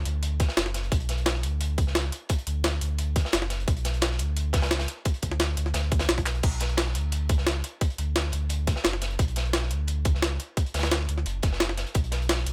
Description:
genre	liquid drum and bass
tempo	174 BPM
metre	4/4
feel	straight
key	B minor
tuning	A4 = 440 Hz
part	sub bass with octave	bass	0.0-12.5 s	F#1 to D2	-30 LUFS	equal	tube saturation
part	crunchy breakbeat drum kit	drums	0.1-12.5 s	hi-hat, snare drum	-36 LUFS	equal	high-pass filter on hats, high-pass filter on snare, high-pass filter on room
part	jungle sampler-style drum kit	drums	0.1-12.5 s	crash cymbal, handclaps, hi-hat, snare drum	-30 LUFS	equal	none
part	electronic kick drum	drums	0.4-12.0 s	none	-27 LUFS	equal	none
room	small room ambience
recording	none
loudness	-27 LUFS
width	mono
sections	0.0-6.4 A section; 6.4-12.5 A section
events	drop 0.0-6.4, 6.4-12.5; drum fill 6.3; band accent 6.3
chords	none

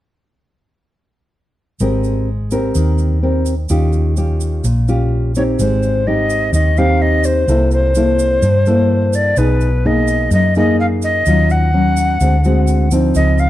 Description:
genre	bossa nova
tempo	127 BPM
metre	4/4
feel	straight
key	Ab major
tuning	A4 = 441 Hz
part	nylon-string guitar	accompaniment	1.8-13.5 s	F#2 to Bb4	-17 LUFS	equal	none
part	hollow-body short-scale fingered electric bass	bass	1.8-13.5 s	Ab1 to G2	-15 LUFS	equal	none
part	tube shaker	percussion	1.8-13.5 s	none	-32 LUFS	right 5 dB	none
part	mellow tenor recorder	melody	5.4-13.5 s	B4 to Gb5	-17 LUFS	left 1 dB	plate reverb
room	light reverb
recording	none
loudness	-12 LUFS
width	side -14 dB against mid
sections	1.8-5.6 A section; 5.6-13.5 B section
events	none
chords	1.8 Abmaj9; 3.7 Eb9; 5.6 Abmaj7; 7.5 C6; 9.4 B6; 11.3 Ebm9; 12.2 D7#11

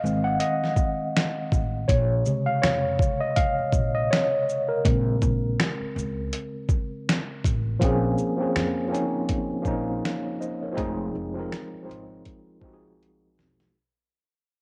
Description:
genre	lo-fi hip hop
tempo	81 BPM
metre	4/4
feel	swing 57% on 16ths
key	Bb minor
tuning	A4 = 442 Hz
part	tine electric piano	accompaniment	0.0-13.8 s	C3 to Gb5	-28 LUFS	equal	cassette tape
part	upright bass	bass	0.0-13.7 s	E1 to F2	-31 LUFS	equal	none
part	dusty soul sampler-style drum kit	drums	0.1-13.7 s	finger snaps, hi-hat, kick drum, shaker, snare drum	-28 LUFS	equal	overdrive
room	light reverb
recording	home recording on cassette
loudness	-25 LUFS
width	mono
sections	0.0-7.8 A section; 7.8-13.7 B section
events	tine electric piano solo 0.0-7.8; fade-out 7.8-13.7; drum fill 13.0-13.7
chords	0.0 Fm7; 1.9 Bbm9; 10.8 Fm7

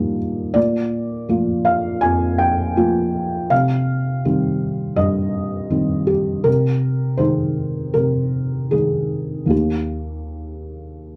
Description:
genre	neoclassical minimalist piano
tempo	81 BPM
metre	4/4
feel	rubato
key	Eb major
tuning	A4 = 440 Hz
part	felt-muted upright piano	solo	0.0-11.2 s	Eb2 to Ab5	-20 LUFS	equal	none
room	wet small room reverb, RT60 0.5 s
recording	heard from further back in the room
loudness	-20 LUFS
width	mono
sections	0.0-11.2 A section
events	none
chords	0.0 Eb; 0.6 Bb; 3.5 Cm; 6.5 Ab/C; 9.5 Eb

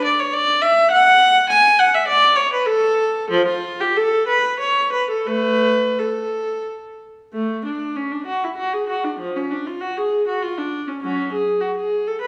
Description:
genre	classical, baroque-style suite movement for unaccompanied viola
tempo	84-103 BPM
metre	3/4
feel	rubato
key	A major, F# minor from 7.3 s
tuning	A4 = 440 Hz
part	warm viola	solo	0.0-12.3 s	F3 to G#5	-19 LUFS	equal	none
room	moderate recital hall reverb, RT60 1.5 s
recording	small room reverb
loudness	-18 LUFS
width	mono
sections	0.0-7.3 A section; 7.3-12.3 A section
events	none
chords	none

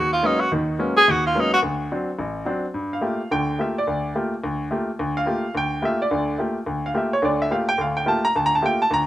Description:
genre	jazz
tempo	214 BPM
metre	4/4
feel	swing 60% on 8ths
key	G dorian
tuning	A4 = 440 Hz
part	clear tenor saxophone	melody	0.0-1.6 s	Eb4 to Ab4	-17 LUFS	equal	plate reverb
part	clear grand piano	accompaniment	0.0-9.1 s	A1 to Bb5	-21 LUFS	equal	plate reverb
room	moderate studio reverb, RT60 0.5 s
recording	rough home demo mix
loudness	-20 LUFS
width	side -14 dB against mid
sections	0.0-2.7 A section; 2.7-9.1 A section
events	tenor saxophone solo 0.0-2.7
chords	0.0 Abm11; 1.6 D7; 2.7 Gm9

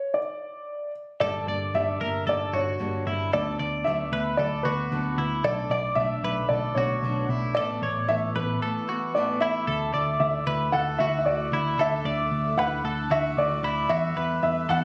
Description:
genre	indie pop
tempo	113 BPM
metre	4/4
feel	straight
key	D major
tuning	A4 = 440 Hz
part	dark upright piano	melody	0.0-14.8 s	B4 to F#5	-30 LUFS	equal	slapback echo
part	fingerpicked steel-string acoustic guitar	accompaniment	1.2-9.7 s	G2 to A4	-37 LUFS	equal	none
part	twelve-string electric guitar	arpeggios	1.2-14.8 s	E4 to D5	-32 LUFS	equal	slapback echo
part	vintage muted picked electric bass	bass	1.2-14.8 s	G1 to E2	-32 LUFS	equal	none
part	glockenspiel with rubber mallets	second line	4.4-14.8 s	B5 to F#6	-38 LUFS	equal	none
part	string machine, full ensemble	sustained chords	5.5-14.8 s	D3 to A4	-43 LUFS	equal	ensemble chorus
room	moderate spring reverb, RT60 1.4 s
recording	recorded on a phone in the room, studio reverb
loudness	-26 LUFS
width	mono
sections	0.0-1.2 A section; 1.2-9.7 B section; 9.7-14.8 C section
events	stop 0.0-1.2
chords	0.0 N.C.; 1.2 Gmadd9; 3.3 D6; 5.5 Bm7; 7.6 Asus2; 9.7 Dadd9; 13.9 Emadd9

